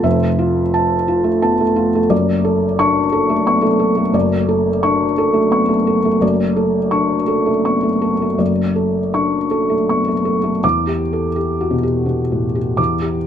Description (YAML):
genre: neoclassical minimalist piano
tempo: 80-90 BPM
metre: 3/4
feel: rubato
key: unclear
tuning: A4 = 442 Hz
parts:
  - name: felt-muted upright piano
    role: solo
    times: 0.0-13.3 s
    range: F1 to D6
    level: -14 LUFS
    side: equal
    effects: none
room: light reverb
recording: none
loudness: -14 LUFS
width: side -9 dB against mid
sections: 0.0-10.6 A section; 10.6-13.3 B section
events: none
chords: 0.0 Fmaj7; 2.1 Dmaj7/F#; 10.6 Em7